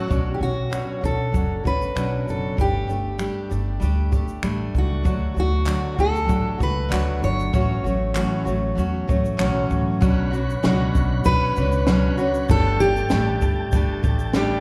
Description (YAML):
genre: acoustic pop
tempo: 97 BPM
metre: 4/4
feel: straight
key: unclear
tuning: A4 = 441 Hz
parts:
  - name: fingerpicked steel-string acoustic guitar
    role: melody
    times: 0.0-14.0 s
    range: F#4 to C#5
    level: -28 LUFS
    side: equal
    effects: none
  - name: picked steel-string acoustic guitar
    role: accompaniment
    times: 0.0-14.6 s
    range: A2 to G4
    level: -27 LUFS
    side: equal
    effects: none
  - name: tonewheel organ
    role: sustained chords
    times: 0.0-0.1, 10.0-14.6 s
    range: A4 to A5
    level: -37 LUFS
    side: equal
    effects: fast rotary speaker
  - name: upright bass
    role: bass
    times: 0.0-14.6 s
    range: F#1 to E2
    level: -27 LUFS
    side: equal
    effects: none
  - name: compact cocktail drum kit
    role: drums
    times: 0.1-14.5 s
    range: finger snaps, kick drum, shaker, snare drum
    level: -27 LUFS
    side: equal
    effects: none
  - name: group handclap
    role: percussion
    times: 5.7-9.5 s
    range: none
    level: -40 LUFS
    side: equal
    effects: none
room: moderate concert hall reverb, RT60 2.3 s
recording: heard from further back in the room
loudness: -22 LUFS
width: mono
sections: 0.1-10.0 A section; 10.0-14.6 B section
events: none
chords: 0.1 Bmadd9; 2.6 Gsus2; 5.1 D; 7.5 A6; 10.0 Bmadd9; 12.5 Gsus2